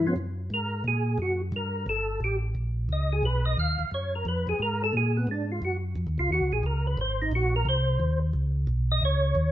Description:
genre	soul jazz organ trio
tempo	176 BPM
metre	4/4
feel	swing 64% on 8ths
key	Db mixolydian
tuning	A4 = 440 Hz
part	percussive tonewheel organ	melody	0.0-9.5 s	F3 to F5	-28 LUFS	equal	slow rotary speaker, chorus vibrato
part	mellow tonewheel organ	bass	0.0-9.5 s	G1 to Bb2	-27 LUFS	equal	slow rotary speaker
room	moderate stone room reverb, RT60 0.9 s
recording	band playing live in one room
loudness	-25 LUFS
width	side -13 dB against mid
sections	0.0-9.5 A section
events	tonewheel organ solo 0.0-9.5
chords	0.2 Gbadd9; 1.5 Gmadd9; 2.9 Db9; 4.3 Bb5; 5.6 Ebm7; 7.0 Abadd9; 8.3 Db7sus2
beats	| 0.17 0.51 0.85 1.20 | 1.53 1.88 2.22 2.56 | 2.90 3.24 3.58 3.92 | 4.26 4.60 4.94 5.28 | 5.62 5.96 6.30 6.64 | 6.99 7.33 7.67 8.01 | 8.35 8.69 9.03 9.37

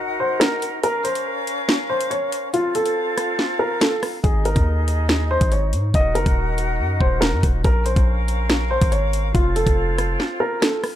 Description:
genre	hip hop, drill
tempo	141 BPM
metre	4/4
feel	half-time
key	Bb minor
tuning	A4 = 440 Hz
part	breathy small flute group	sustained chords	0.0-11.0 s	C4 to Gb5	-27 LUFS	left 1 dB	none
part	dark baby grand piano	melody	0.2-10.8 s	F4 to Eb5	-23 LUFS	equal	tape echo
part	drill drum kit	drums	0.4-10.9 s	hi-hat, kick drum, rim click, snare drum	-20 LUFS	equal	none
part	hard-hitting 808-style bass	bass	4.2-10.2 s	Eb1 to Ab2	-21 LUFS	equal	none
room	little or no reverb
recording	dark, warm production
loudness	-18 LUFS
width	side -12 dB against mid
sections	0.0-11.0 A section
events	break 0.0-4.2, 10.2-11.0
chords	0.0 Ebm; 0.8 Bbmadd9; 2.5 F; 4.2 Ab5; 5.9 Ebm; 7.6 Bbmadd9; 9.3 F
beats	0.41 | 0.84 1.26 1.69 2.11 | 2.54 2.96 3.39 3.81 | 4.24 4.67 5.09 5.52 | 5.94 6.37 6.79 7.22 | 7.64 8.07 8.49 8.92 | 9.35 9.77 10.20 10.62

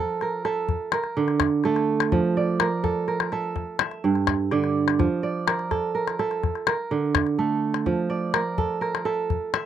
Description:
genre	west african traditional, West African string and xylophone music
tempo	84 BPM (dotted quarters)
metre	12/8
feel	straight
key	F major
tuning	A4 = 440 Hz
part	kora	arpeggios	0.0-9.7 s	G2 to E5	-23 LUFS	right 4 dB	none
part	calabash	percussion	0.2-9.6 s	none	-26 LUFS	left 8 dB	none
room	light reverb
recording	dry, close 1970s-style studio recording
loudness	-22 LUFS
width	side -10 dB against mid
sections	0.0-9.7 A section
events	none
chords	0.0 F; 0.7 D5; 2.1 F; 3.6 Gm; 5.0 F; 6.4 D5; 7.9 F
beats	0.69 1.41 | 2.12 2.84 3.56 4.28 | 4.99 5.71 6.43 7.15 | 7.86 8.58 9.30

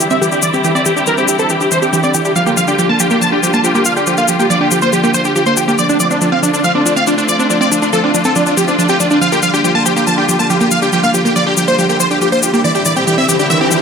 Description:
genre	uplifting trance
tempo	140 BPM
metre	4/4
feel	straight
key	G dorian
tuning	A4 = 440 Hz
part	big supersaw lead	melody	0.0-13.8 s	D4 to A5	-15 LUFS	equal	phaser, low-pass filter, dub echo
part	supersaw stab	second line	0.0-13.8 s	D4 to A5	-19 LUFS	equal	low-pass filter, dub echo
part	muted studio string section	sustained chords	0.0-13.8 s	D3 to F4	-18 LUFS	left 2 dB	none
part	analog pluck	arpeggios	0.0-13.8 s	E3 to D4	-17 LUFS	right 2 dB	chorus, dub echo
part	cabasa	percussion	0.0-13.8 s	none	-19 LUFS	left 7 dB	none
part	riser	sound effects	12.9-13.8 s	none	-20 LUFS	equal	none
room	moderate lush hall reverb, RT60 2.6 s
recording	none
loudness	-10 LUFS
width	side -6 dB against mid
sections	0.0-13.8 A section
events	riser 12.9-13.8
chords	0.0 Cadd9; 2.4 Gm7; 5.8 Dm7; 9.2 Gm7; 12.6 Cadd9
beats	0.21 | 0.64 1.07 1.50 1.93 | 2.36 2.79 3.21 3.64 | 4.07 4.50 4.93 5.36 | 5.79 6.21 6.64 7.07 | 7.50 7.93 8.36 8.79 | 9.21 9.64 10.07 10.50 | 10.93 11.36 11.79 12.21 | 12.64 13.07 13.50

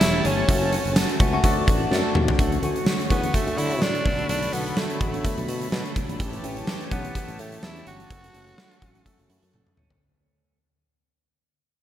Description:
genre	1980s-style pop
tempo	126 BPM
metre	4/4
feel	swing 55% on 16ths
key	D major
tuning	A4 = 440 Hz
part	raspy tenor saxophone	melody	0.0-9.5 s	A3 to F#4	-29 LUFS	equal	tape echo
part	tine electric piano	accompaniment	0.0-10.0 s	D3 to A4	-29 LUFS	left 4 dB	phaser
part	chorused pulse-width pad	sustained chords	0.0-10.0 s	G3 to C#6	-33 LUFS	left 1 dB	none
part	twelve-string electric guitar	riff	0.0-10.6 s	E3 to G4	-34 LUFS	right 4 dB	lush chorus, tape echo
part	sustaining fretless electric bass	bass	0.0-10.0 s	E1 to D3	-29 LUFS	equal	none
part	huge arena drum kit	drums	0.0-10.0 s	hi-hat, kick drum, snare drum, tambourine, toms	-24 LUFS	equal	gated reverb
room	light reverb, small room ambience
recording	none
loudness	-21 LUFS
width	side -11 dB against mid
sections	0.0-2.4 A section; 2.4-10.0 B section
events	drum fill 1.9-2.4, 9.5-10.0; fade-out 2.4-10.0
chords	0.5 F#m; 1.4 D; 2.4 Dmaj7; 4.1 Bm7; 6.2 A7; 8.1 F#m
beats	0.01 | 0.48 0.96 1.44 1.91 | 2.39 2.87 3.34 3.82 | 4.29 4.77 5.25 5.72 | 6.20 6.68 7.15 7.63 | 8.10 8.58 9.06 9.53

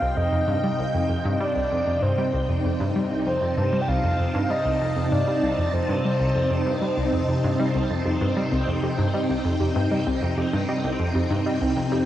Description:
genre	ambient, sequencer-driven space music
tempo	97 BPM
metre	4/4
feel	straight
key	C dorian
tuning	A4 = 439 Hz
part	breathy flute-like synth lead	melody	0.0-7.3 s	C5 to G5	-27 LUFS	equal	chorus, ping-pong delay
part	phased string machine	sustained chords	0.0-12.1 s	C3 to A5	-25 LUFS	equal	ensemble chorus, phaser
part	analog pluck	riff	0.0-12.0 s	C2 to G3	-25 LUFS	equal	chorus, cassette tape, ping-pong delay
part	warbly dusty pluck	arpeggios	7.6-12.0 s	C4 to Eb5	-30 LUFS	left 1 dB	chorus, auto-pan, ping-pong delay
room	wet huge ambient reverb, RT60 9.1 s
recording	worn, warbling old tape, cassette tape, warbly pitch drift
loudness	-21 LUFS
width	side -12 dB against mid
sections	0.0-12.1 A section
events	none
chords	0.0 Cm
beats	| 0.17 0.79 1.41 2.03 | 2.65 3.26 3.88 4.50 | 5.12 5.74 6.36 6.97 | 7.59 8.21 8.83 9.45 | 10.07 10.69 11.30 11.92

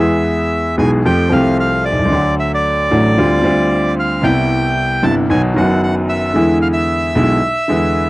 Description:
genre	tango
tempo	113 BPM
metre	4/4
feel	rubato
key	unclear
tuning	A4 = 440 Hz
part	bandoneon	melody	0.0-8.1 s	D5 to A5	-18 LUFS	equal	cassette tape
part	warm grand piano	accompaniment	0.0-8.1 s	F#1 to G#4	-13 LUFS	equal	cassette tape
room	moderate booth ambience, RT60 0.3 s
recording	home recording on cassette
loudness	-12 LUFS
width	side -19 dB against mid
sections	0.0-8.1 A section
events	none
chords	0.0 E; 1.1 Fadd9; 2.1 D; 3.2 G7sus4/D; 4.2 Cmaj7; 5.3 B; 6.4 E7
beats	0.52 1.06 1.59 | 2.13 2.66 3.19 3.72 | 4.24 4.77 5.30 5.83 | 6.36 6.89 7.43 7.97

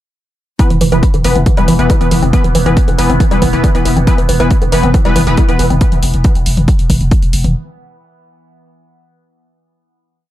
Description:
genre	driving peak-time techno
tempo	138 BPM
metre	4/4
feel	straight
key	unclear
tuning	A4 = 440 Hz
part	rave stab	stabs	0.6-5.7 s	E3 to B4	-17 LUFS	left 3 dB	chorus, built-in reverb, sidechain pumping, dub echo
part	overtone-sweeping drone	drone	1.2-5.9 s	E3 to B3	-22 LUFS	right 2 dB	chorus, built-in reverb, phaser, sidechain pumping
part	electronic kick drum	drums	0.6-7.2 s	none	-12 LUFS	equal	overdrive
part	techno drum kit	drums	0.6-7.5 s	hi-hat, toms	-20 LUFS	left 1 dB	overdrive
part	woody wave-folded pluck	riff	0.7-5.7 s	D3 to C4	-18 LUFS	right 2 dB	chorus, overdrive, sidechain pumping, dub echo
part	growling 808-style bass	bass	0.7-7.5 s	E1	-15 LUFS	equal	sidechain pumping, low-pass filter
room	little or no reverb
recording	echo-heavy mix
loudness	-9 LUFS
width	side -14 dB against mid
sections	0.6-7.5 groove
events	none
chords	0.6 E5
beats	| 0.59 1.03 1.46 1.90 | 2.33 2.77 3.20 3.64 | 4.07 4.51 4.94 5.38 | 5.81 6.25 6.68 7.12

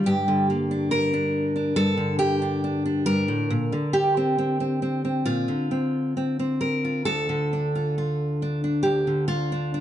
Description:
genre	folk, solo fingerstyle acoustic guitar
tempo	68 BPM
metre	4/4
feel	rubato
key	unclear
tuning	A4 = 441 Hz
part	fingerpicked steel-string acoustic guitar	solo	0.0-9.8 s	D2 to Bb4	-22 LUFS	equal	none
room	moderate studio reverb, RT60 0.6 s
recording	dark, warm production, nothing above 10.7 kHz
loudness	-22 LUFS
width	side -11 dB against mid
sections	0.0-9.8 A section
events	none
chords	0.1 Gm; 3.5 Bbadd9; 7.1 Dm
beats	| 0.06 0.91 1.76 2.62 | 3.50 4.38 5.26 6.16 | 7.07 7.96 8.85 9.73

